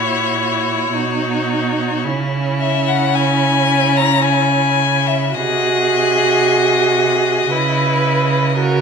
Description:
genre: classical, slow romantic movement for string quartet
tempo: 55 BPM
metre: 3/4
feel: rubato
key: unclear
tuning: A4 = 440 Hz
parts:
  - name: rich violin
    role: melody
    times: 0.0-8.6 s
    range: C#5 to A#5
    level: -18 LUFS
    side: left 8 dB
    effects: none
  - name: clear violin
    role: second line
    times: 0.0-8.8 s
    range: E4 to B4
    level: -22 LUFS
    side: left 2 dB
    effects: none
  - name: warm viola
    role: accompaniment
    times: 0.0-8.8 s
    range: C#4 to F#4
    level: -19 LUFS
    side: right 3 dB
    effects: none
  - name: rich cello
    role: bass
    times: 0.0-8.8 s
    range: A#2 to C#3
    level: -20 LUFS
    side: right 5 dB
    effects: none
room: wet recital hall reverb, RT60 1.7 s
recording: minimal, uncompressed stereo recording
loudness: -13 LUFS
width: side -6 dB against mid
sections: 0.0-8.8 A section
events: none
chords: 0.0 F#7/A#; 0.9 B; 2.0 C#m; 5.3 G#7/B#; 7.5 C#m7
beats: 0.93 | 2.04 3.14 4.25 | 5.34 6.42 7.50 | 8.57

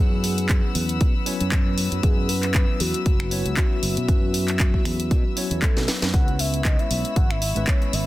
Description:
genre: nu-disco, nu disco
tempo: 117 BPM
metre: 4/4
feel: swing 56% on 16ths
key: unclear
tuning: A4 = 440 Hz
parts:
  - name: soft octave-layered synth lead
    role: melody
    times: 0.0-8.1 s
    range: F#4 to F#5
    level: -30 LUFS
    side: left 2 dB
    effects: chorus, tremolo, analog delay
  - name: tine electric piano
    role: accompaniment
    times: 0.0-8.1 s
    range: F#3 to C#5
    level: -30 LUFS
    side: equal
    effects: medium stereo tremolo, sidechain pumping, slapback echo
  - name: rich chamber string section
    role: sustained chords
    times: 0.0-8.1 s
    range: B4 to E6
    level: -34 LUFS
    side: left 5 dB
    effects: sidechain pumping
  - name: fingered electric bass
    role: bass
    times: 0.0-8.1 s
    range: F#1 to B2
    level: -26 LUFS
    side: equal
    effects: none
  - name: house drum kit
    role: drums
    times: 0.2-8.0 s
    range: finger snaps, handclaps, hi-hat, snare drum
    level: -27 LUFS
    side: equal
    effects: none
  - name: electronic kick drum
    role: drums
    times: 0.5-7.8 s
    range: none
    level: -20 LUFS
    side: equal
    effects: none
room: little or no reverb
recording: dense, heavily limited modern master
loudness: -19 LUFS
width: side -16 dB against mid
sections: 0.0-6.1 A section; 6.1-8.1 B section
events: drum fill 5.8-6.1; drop 6.1-8.1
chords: 0.0 F#7sus4; 6.1 C#m7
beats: 0.50 1.01 1.52 | 2.03 2.55 3.06 3.57 | 4.08 4.60 5.11 5.62 | 6.14 6.65 7.16 7.67

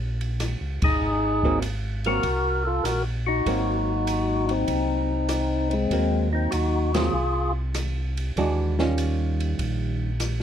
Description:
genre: soul jazz organ trio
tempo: 98 BPM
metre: 4/4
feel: swing 69% on 8ths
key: unclear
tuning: A4 = 440 Hz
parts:
  - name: mellow tonewheel organ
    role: bass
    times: 0.0-10.4 s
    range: G1 to Eb2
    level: -26 LUFS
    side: equal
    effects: slow rotary speaker
  - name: open jazz drum kit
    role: drums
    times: 0.2-10.4 s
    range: hi-hat, kick drum, ride cymbal, rim click, snare drum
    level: -31 LUFS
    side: equal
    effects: none
  - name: percussive tonewheel organ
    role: melody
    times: 0.8-7.5 s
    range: Ab3 to Bb4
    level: -24 LUFS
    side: left 2 dB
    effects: slow rotary speaker, overdrive
  - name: archtop guitar, miked and amplified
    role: accompaniment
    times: 1.4-10.1 s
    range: Eb3 to Gb4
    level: -28 LUFS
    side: right 3 dB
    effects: none
room: light reverb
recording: dark, warm production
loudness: -22 LUFS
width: side -9 dB against mid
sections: 0.0-10.4 A section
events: band accent 0.7-1.0, 6.8-7.1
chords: 0.0 Eb7; 1.0 Ab9; 8.4 Eb9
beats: 0.40 | 1.01 1.62 2.24 2.85 | 3.46 4.07 4.69 5.30 | 5.91 6.53 7.14 7.75 | 8.36 8.98 9.59 10.20

